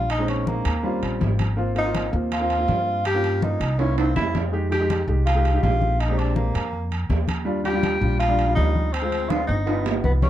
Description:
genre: Afro-Cuban jazz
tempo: 163 BPM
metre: 4/4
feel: straight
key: Eb major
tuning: A4 = 440 Hz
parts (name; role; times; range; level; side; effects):
- breathy tenor saxophone; melody; 0.0-10.3 s; Bb3 to G4; -25 LUFS; equal; plate reverb
- warm upright piano; accompaniment; 0.0-10.3 s; G3 to G4; -27 LUFS; equal; none
- upright bass; bass; 0.0-10.3 s; G1 to G2; -23 LUFS; equal; none
- congas; percussion; 0.1-10.3 s; none; -28 LUFS; left 3 dB; none
- timbales; percussion; 0.1-10.3 s; none; -30 LUFS; right 5 dB; none
room: light reverb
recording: dark, warm production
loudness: -20 LUFS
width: side -12 dB against mid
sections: 0.0-10.3 A section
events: drum fill 3.8-4.5, 9.3-10.3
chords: 0.1 Bbm11; 0.8 Eb13; 1.6 Ab69; 3.1 Gm7b5; 3.8 C7b9; 4.5 Fm7; 6.0 Bb13; 7.5 Ebmaj9; 8.9 Dm7b5; 9.7 Gaug7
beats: | 0.10 0.47 0.84 1.21 | 1.58 1.95 2.32 2.69 | 3.06 3.42 3.79 4.16 | 4.53 4.90 5.26 5.63 | 6.00 6.37 6.73 7.10 | 7.47 7.84 8.20 8.57 | 8.94 9.30 9.67 10.04

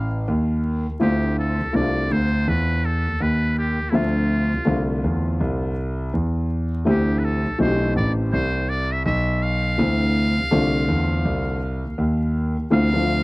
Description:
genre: hip hop, jazz-hop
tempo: 82 BPM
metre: 4/4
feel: swing 62% on 16ths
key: D dorian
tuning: A4 = 440 Hz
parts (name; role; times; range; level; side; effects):
- trumpet with metal mute; melody; 0.0-13.2 s; E4 to F5; -27 LUFS; equal; none
- dark concert grand piano; bass; 0.0-13.2 s; A1 to E2; -21 LUFS; equal; none
- warm upright piano; accompaniment; 1.0-13.2 s; D3 to E5; -23 LUFS; left 1 dB; none
room: little or no reverb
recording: dry, close 1970s-style studio recording, vinyl crackle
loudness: -19 LUFS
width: side -22 dB against mid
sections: 0.0-1.0 A section; 1.0-12.7 A section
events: break 0.0-1.0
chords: 0.0 Dm (rootless); 1.0 Dm9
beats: 0.27 | 1.01 1.74 2.47 3.20 | 3.93 4.66 5.40 6.13 | 6.86 7.59 8.32 9.05 | 9.79 10.52 11.25 11.98 | 12.71

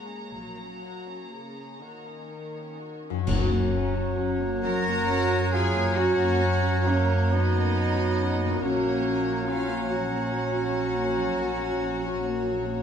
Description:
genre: classical, slow romantic movement for symphony orchestra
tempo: 40-48 BPM (dotted quarters)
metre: 12/8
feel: rubato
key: F# major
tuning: A4 = 435 Hz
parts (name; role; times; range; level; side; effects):
- dark studio violin section; melody; 0.0-12.8 s; C#5 to A#5; -39 LUFS; left 1 dB; none
- rich studio violin section; second line; 0.0-12.8 s; A#3 to A#5; -37 LUFS; equal; none
- dark studio viola section; accompaniment; 0.0-12.8 s; C#3 to F#4; -34 LUFS; left 1 dB; none
- concert harp; arpeggios; 0.0-12.5 s; F#2 to C#5; -34 LUFS; left 8 dB; none
- dark chamber cello section; bass; 0.0-12.8 s; A#3 to A#4; -30 LUFS; equal; none
- dark studio double bass section; bass; 0.3-12.8 s; A#1 to F#2; -28 LUFS; right 2 dB; none
- clear clarinet; second line; 3.3-12.8 s; C#5; -37 LUFS; left 1 dB; none
- mellow hollow silver concert flute; second line; 3.3-12.8 s; A#5; -37 LUFS; left 2 dB; none
- warm cor anglais; second line; 3.3-12.8 s; F#5; -38 LUFS; right 2 dB; none
- dark bassoon; accompaniment; 3.3-12.8 s; F#3; -35 LUFS; right 2 dB; none
- mellow French horn section; sustained chords; 3.3-12.8 s; C#4 to F#4; -33 LUFS; equal; none
- clash cymbals and concert bass drum; percussion; 3.3-5.0 s; none; -34 LUFS; equal; none
- timpani; percussion; 3.3-4.6 s; F#2; -31 LUFS; left 2 dB; none
- mellow trumpet; stabs; 4.6-12.8 s; A#3 to F#4; -33 LUFS; right 2 dB; none
room: wet stone room reverb, RT60 1.0 s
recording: dark, warm production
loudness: -23 LUFS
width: side -8 dB against mid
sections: 0.0-3.3 A section; 3.3-12.8 B section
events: band accent 3.3-4.2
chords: 0.0 F#/A#; 3.3 F#; 8.6 F#/A#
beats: 0.34 1.82 | 3.27 4.63 5.97 7.30 | 8.62 9.88 11.18 12.47

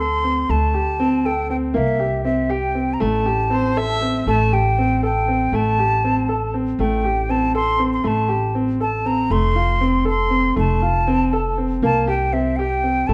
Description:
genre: contemporary instrumental, chamber music in an uneven meter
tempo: 238 BPM (eighths)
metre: 5/8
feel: straight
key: A phrygian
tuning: A4 = 437 Hz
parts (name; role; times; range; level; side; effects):
- hollow concert flute; melody; 0.0-13.1 s; E5 to C6; -24 LUFS; equal; none
- clear baby grand piano; arpeggios; 0.0-13.1 s; A3 to A4; -23 LUFS; equal; none
- upright bass; bass; 0.0-13.1 s; F1 to D2; -25 LUFS; equal; none
- warm viola; second line; 3.5-4.3 s; C5 to E5; -27 LUFS; equal; none
room: moderate scoring stage reverb, RT60 1.8 s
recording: dark, warm production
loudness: -19 LUFS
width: mono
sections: 0.0-4.3 A section; 4.3-13.1 B section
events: none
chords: 0.0 D7sus4; 1.8 C7; 3.0 Am7; 9.3 F; 11.8 C5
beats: 0.01 0.26 | 0.51 0.76 1.01 1.26 1.51 | 1.76 2.02 2.27 2.52 2.77 | 3.02 3.27 3.52 3.77 4.03 | 4.28 4.53 4.78 5.03 5.28 | 5.53 5.79 6.04 6.29 6.54 | 6.79 7.04 7.30 7.55 7.80 | 8.05 8.30 8.55 8.81 9.06 | 9.31 9.56 9.82 10.07 10.32 | 10.57 10.82 11.08 11.33 11.58 | 11.83 12.09 12.34 12.59 12.84 | 13.10

